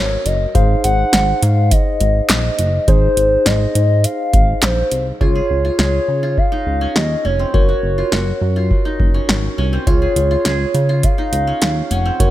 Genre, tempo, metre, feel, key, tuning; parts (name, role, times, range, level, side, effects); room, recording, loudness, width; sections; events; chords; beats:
synth-pop; 103 BPM; 4/4; straight; A4 = 440 Hz
hollow clarinet-like synth lead; melody; 0.0-12.3 s; C5 to Gb5; -20 LUFS; equal; chorus, tape echo
tine electric piano; accompaniment; 0.0-12.3 s; Eb4 to Db5; -23 LUFS; left 1 dB; medium stereo tremolo
chorused synth bass; bass; 0.0-12.3 s; F1 to Db3; -17 LUFS; equal
electro analog drum machine; drums; 0.3-12.3 s; handclaps, hi-hat, kick drum, snare drum; -17 LUFS; equal
qanun; arpeggios; 5.2-12.3 s; C4 to Ab4; -25 LUFS; right 1 dB; tape echo
little or no reverb; -13 LUFS; side -14 dB against mid
0.0-5.2 A section; 5.2-12.3 B section
0.0 Gbadd9; 0.6 Ab6; 5.2 Db; 7.5 Gb; 9.9 Db
| 0.55 1.13 1.72 2.30 | 2.88 3.46 4.05 4.63 | 5.21 5.79 6.38 6.96 | 7.54 8.12 8.71 9.29 | 9.87 10.45 11.04 11.62 | 12.20